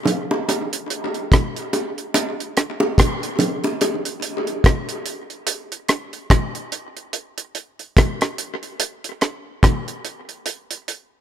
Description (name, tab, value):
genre	reggae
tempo	72 BPM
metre	4/4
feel	swing 59% on 16ths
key	none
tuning	none
part	deep reggae drum kit	drums	0.1-11.1 s	hi-hat, kick drum, rim click	-18 LUFS	equal	none
part	bongos	percussion	0.1-4.0 s	none	-23 LUFS	equal	tape echo
room	light reverb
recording	echo-heavy mix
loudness	-19 LUFS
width	side -10 dB against mid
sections	0.0-11.2 A section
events	break 3.8-11.2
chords	none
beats	| 0.49 1.32 2.15 2.98 | 3.81 4.65 5.48 6.31 | 7.14 7.97 8.80 9.64 | 10.47